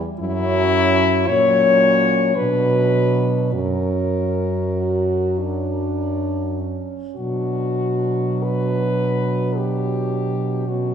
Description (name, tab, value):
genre	classical, lyrical piece for horn quartet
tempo	46-57 BPM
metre	3/4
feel	rubato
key	B minor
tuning	A4 = 441 Hz
part	warm French horn	second line	0.0-10.9 s	C#4 to F#4	-26 LUFS	right 3 dB	none
part	mellow French horn	accompaniment	0.0-10.9 s	F#3	-25 LUFS	equal	none
part	mellow French horn	bass	0.0-10.9 s	F#2 to B2	-23 LUFS	right 2 dB	none
part	clear French horn	melody	0.2-10.9 s	E4 to C#5	-20 LUFS	left 4 dB	none
room	wet recital hall reverb, RT60 1.7 s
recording	heard from further back in the room, faint mains hum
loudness	-17 LUFS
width	side -8 dB against mid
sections	0.0-7.2 A section; 7.2-10.9 B section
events	none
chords	0.2 F#7; 2.4 Bm; 3.5 F#; 7.2 Bm